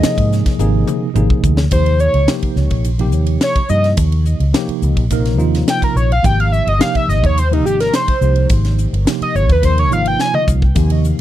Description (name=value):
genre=electric jazz fusion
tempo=106 BPM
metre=4/4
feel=straight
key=unclear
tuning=A4 = 440 Hz
part: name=overdriven synth lead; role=melody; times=0.0-10.4 s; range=Eb4 to Ab5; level=-19 LUFS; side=equal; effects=distortion, chorus, tape echo
part: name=tine electric piano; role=accompaniment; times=0.0-11.2 s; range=C3 to Bb4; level=-20 LUFS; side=right 1 dB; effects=medium stereo tremolo
part: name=vintage muted fingered electric bass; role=bass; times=0.0-11.1 s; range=G1 to Ab2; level=-15 LUFS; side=equal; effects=none
part: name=crisp fusion drum kit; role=drums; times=0.0-11.2 s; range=hi-hat, kick drum, ride cymbal, snare drum, toms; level=-18 LUFS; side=equal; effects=none
room=little or no reverb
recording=dry, close 1970s-style studio recording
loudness=-12 LUFS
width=side -13 dB against mid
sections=0.0-1.7 A section; 1.7-11.2 B section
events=drum fill 0.6-1.7, 10.2-10.8; analog synth lead solo 1.7-11.2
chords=0.0 Ab69; 1.2 Abadd9; 1.7 Ebadd9; 6.2 Abmaj7